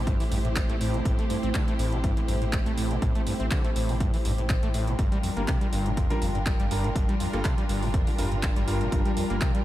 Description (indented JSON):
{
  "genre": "acid house",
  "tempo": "122 BPM",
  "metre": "4/4",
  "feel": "swing 54% on 16ths",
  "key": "A phrygian",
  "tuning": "A4 = 440 Hz",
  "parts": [
    { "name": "dark studio string section", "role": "sustained chords", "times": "0.0-9.6 s", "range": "G3 to C5", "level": "-32 LUFS", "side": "equal", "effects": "sidechain pumping" },
    { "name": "round analog bass", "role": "bass", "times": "0.0-9.4 s", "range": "G1 to A1", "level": "-30 LUFS", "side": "equal", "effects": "sidechain pumping" },
    { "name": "warbly tape-like pad", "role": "texture", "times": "0.0-9.6 s", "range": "C4 to G5", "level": "-40 LUFS", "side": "right 1 dB", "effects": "chorus, built-in reverb, sidechain pumping" },
    { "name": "overdriven acid bass", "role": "riff", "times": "0.1-9.6 s", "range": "F2 to C4", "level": "-31 LUFS", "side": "equal", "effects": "tube saturation, wide subtle chorus, tape echo" },
    { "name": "electro analog drum machine", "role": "drums", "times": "0.1-9.6 s", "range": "handclaps, hi-hat", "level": "-36 LUFS", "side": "equal", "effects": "none" },
    { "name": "electronic kick drum", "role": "drums", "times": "0.1-9.5 s", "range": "none", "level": "-26 LUFS", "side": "equal", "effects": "none" },
    { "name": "clear grand piano", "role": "stabs", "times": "5.4-9.4 s", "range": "G3 to Bb4", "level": "-34 LUFS", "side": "right 1 dB", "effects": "lush chorus, tape echo" }
  ],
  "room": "light reverb, digital ambience",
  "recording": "none",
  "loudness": "-24 LUFS",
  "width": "side -14 dB against mid",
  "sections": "0.0-9.6 A section",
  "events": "fade-in on ambient pad 0.0-9.6",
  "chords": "0.0 Am7; 5.0 Gm7",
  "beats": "0.07 0.56 | 1.05 1.55 2.04 2.53 | 3.02 3.51 4.00 4.50 | 4.99 5.48 5.97 6.46 | 6.96 7.45 7.94 8.43 | 8.92 9.41"
}